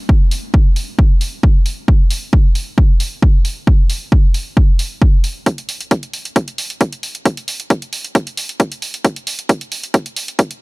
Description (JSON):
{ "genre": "techno", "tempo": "134 BPM", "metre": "4/4", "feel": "straight", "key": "none", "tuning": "none", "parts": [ { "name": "electronic kick drum", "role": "drums", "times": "0.1-10.5 s", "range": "none", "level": "-11 LUFS", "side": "equal", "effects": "overdrive, high-pass filter on kick" }, { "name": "electronic hi-hat", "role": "drums", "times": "0.3-10.6 s", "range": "none", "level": "-24 LUFS", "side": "right 2 dB", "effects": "overdrive" } ], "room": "little or no reverb", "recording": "none", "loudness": "-14 LUFS", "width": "side -29 dB against mid", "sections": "0.0-5.5 A section; 5.5-10.6 B section", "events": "build-up 5.5-10.6", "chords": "none" }